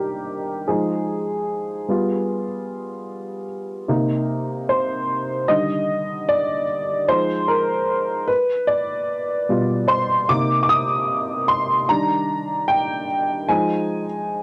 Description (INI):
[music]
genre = hip hop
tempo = 75 BPM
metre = 4/4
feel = swing 58% on 16ths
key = C minor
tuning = A4 = 440 Hz
[part]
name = dark upright piano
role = solo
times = 0.0-14.4 s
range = B2 to Eb6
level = -19 LUFS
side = equal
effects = cassette tape, low-pass filter
[sound]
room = light reverb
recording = dry, gritty hardware recording, cassette tape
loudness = -18 LUFS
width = side -28 dB against mid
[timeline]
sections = 0.0-10.3 A section; 10.3-14.4 B section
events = upright piano solo 0.0-10.3, 10.3-14.4; filter sweep on upright piano 0.0-10.3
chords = 0.0 Ebmaj7; 0.7 Fm7; 1.9 G7b9; 3.9 Cm7; 5.5 Ebmaj7; 7.1 Fm7; 8.3 G7; 10.3 Cm7; 11.9 Ebmaj7; 13.5 Fm7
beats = | 0.68 1.48 2.28 3.08 | 3.88 4.68 5.48 6.28 | 7.08 7.88 8.68 9.48 | 10.28 11.08 11.88 12.68 | 13.48 14.28